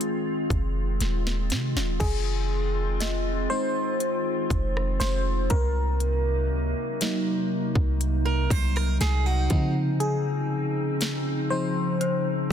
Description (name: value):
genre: contemporary R&B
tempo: 60 BPM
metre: 4/4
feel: straight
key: unclear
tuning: A4 = 445 Hz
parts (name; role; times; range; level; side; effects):
- FM electric piano; accompaniment; 0.0-12.5 s; Eb3 to C5; -29 LUFS; left 1 dB; chorus
- glassy FM pad; sustained chords; 0.0-12.5 s; C3 to F4; -30 LUFS; equal; ensemble chorus, built-in reverb, sidechain pumping
- trap drum kit; drums; 0.0-12.5 s; crash cymbal, hi-hat, kick drum, rim click, snare drum; -29 LUFS; equal; none
- clean 808-style bass; bass; 0.5-12.5 s; Eb1 to Db3; -26 LUFS; equal; none
- worn celesta; texture; 3.0-5.3, 12.0-12.5 s; C5 to Eb5; -39 LUFS; right 5 dB; tape echo
- fingerpicked steel-string acoustic guitar; arpeggios; 8.3-9.7 s; Gb4 to C5; -32 LUFS; right 5 dB; tape echo
room: digital ambience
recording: dense, heavily limited modern master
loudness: -23 LUFS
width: side -9 dB against mid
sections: 0.0-2.0 A section; 2.0-12.5 B section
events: drum fill 1.0-2.0; FM electric piano solo 2.0-12.5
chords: 0.0 Fm7; 5.5 Cm7b5; 9.5 Dbmaj9